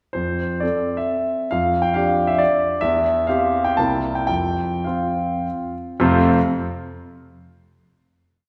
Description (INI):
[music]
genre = classical, romantic triple-time dance for piano with dotted rhythms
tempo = 97-145 BPM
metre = 3/4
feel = rubato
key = F major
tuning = A4 = 439 Hz
[part]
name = warm concert grand piano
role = solo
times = 0.1-6.4 s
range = C2 to A5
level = -21 LUFS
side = equal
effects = none
[sound]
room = wet recital hall reverb, RT60 1.7 s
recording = recorded in a church or concert hall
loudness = -20 LUFS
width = mono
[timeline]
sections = 0.2-6.0 A section; 6.0-7.6 final chord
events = slowing down 2.2-6.0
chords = 0.2 F; 1.5 G5/F; 2.8 C/E; 3.8 C7; 4.3 F5; 6.0 F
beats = | 0.16 0.63 1.10 | 1.52 1.97 2.41 | 2.83 3.28 3.77 | 4.29 4.86 5.45 | 6.00